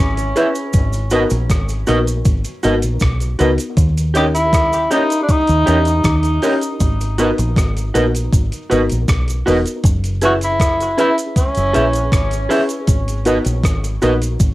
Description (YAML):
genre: lovers rock reggae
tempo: 79 BPM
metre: 4/4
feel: straight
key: G# minor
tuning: A4 = 439 Hz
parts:
  - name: warm tenor saxophone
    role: melody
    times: 0.0-12.5 s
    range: C#4 to G4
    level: -19 LUFS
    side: equal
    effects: cassette tape, tape echo
  - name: deep dub fingered electric bass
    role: bass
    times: 0.0-14.5 s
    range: E1 to E2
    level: -18 LUFS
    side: equal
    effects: none
  - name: crisp 8-bit digital drum machine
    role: drums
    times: 0.2-14.5 s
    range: hi-hat, kick drum, rim click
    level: -18 LUFS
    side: equal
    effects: overdrive
  - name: cabasa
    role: percussion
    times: 0.2-14.5 s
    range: none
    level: -32 LUFS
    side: right 4 dB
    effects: none
  - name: FM electric piano with soft pad layer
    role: accompaniment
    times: 0.4-14.3 s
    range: B3 to B4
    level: -21 LUFS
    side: left 1 dB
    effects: chorus, cassette tape, analog delay
  - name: electric guitar through a small old amp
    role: stabs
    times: 0.4-14.1 s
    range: F#4 to E5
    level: -18 LUFS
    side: right 2 dB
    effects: warbly pitch drift, cassette tape
room: light reverb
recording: home recording on cassette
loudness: -14 LUFS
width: side -17 dB against mid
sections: 0.0-14.5 A section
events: none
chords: 0.0 F#9sus4 (rootless); 0.7 G#m7; 3.8 D#7; 6.8 G#m7; 9.8 F#9sus4; 12.9 G#m7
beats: | 0.74 1.50 2.26 3.01 | 3.77 4.53 5.29 6.05 | 6.80 7.56 8.32 9.08 | 9.84 10.60 11.36 12.12 | 12.88 13.64 14.40